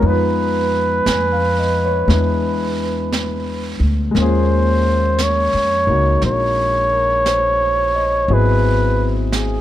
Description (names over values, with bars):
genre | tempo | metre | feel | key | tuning
jazz ballad | 58 BPM | 4/4 | swing 67% on 8ths | unclear | A4 = 440 Hz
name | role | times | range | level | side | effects
mellow flugelhorn | melody | 0.0-9.6 s | Ab4 to Db5 | -18 LUFS | right 1 dB | none
dark baby grand piano | accompaniment | 0.0-9.6 s | Gb3 to Ab5 | -21 LUFS | left 3 dB | none
upright bass | bass | 0.0-9.6 s | Ab1 to F2 | -19 LUFS | equal | none
jazz brush drum kit | drums | 0.0-9.6 s | brushed snare drum, hi-hat, snare drum | -28 LUFS | right 4 dB | none
room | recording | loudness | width
little or no reverb | close, detailed microphones | -14 LUFS | side -12 dB against mid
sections
0.0-9.6 A section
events
none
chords
0.0 Fm7b5; 2.1 E7; 4.2 Ebm11; 8.3 Ab7alt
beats
| 0.04 1.07 2.10 3.13 | 4.16 5.19 6.22 7.26 | 8.29 9.33